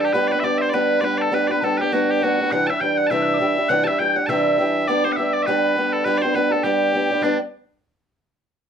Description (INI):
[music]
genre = celtic folk, Celtic reel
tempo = 203 BPM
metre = 4/4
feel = swing 57% on 8ths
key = G major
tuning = A4 = 443 Hz
[part]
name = loud bright bagpipes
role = melody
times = 0.0-7.4 s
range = D4 to A5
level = -22 LUFS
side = equal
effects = none
[part]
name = mellow wooden whistle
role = second line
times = 0.0-7.4 s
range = D5 to G6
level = -27 LUFS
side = left 4 dB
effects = none
[part]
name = fingerpicked old ladder-braced acoustic guitar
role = accompaniment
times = 0.0-7.4 s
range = C3 to G4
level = -20 LUFS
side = right 1 dB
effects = none
[sound]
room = moderate studio reverb, RT60 0.6 s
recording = dark, warm production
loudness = -17 LUFS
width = side -8 dB against mid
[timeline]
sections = 0.0-7.2 A section; 7.2-8.4 B section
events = none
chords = 0.1 G; 2.5 Cadd9; 4.9 G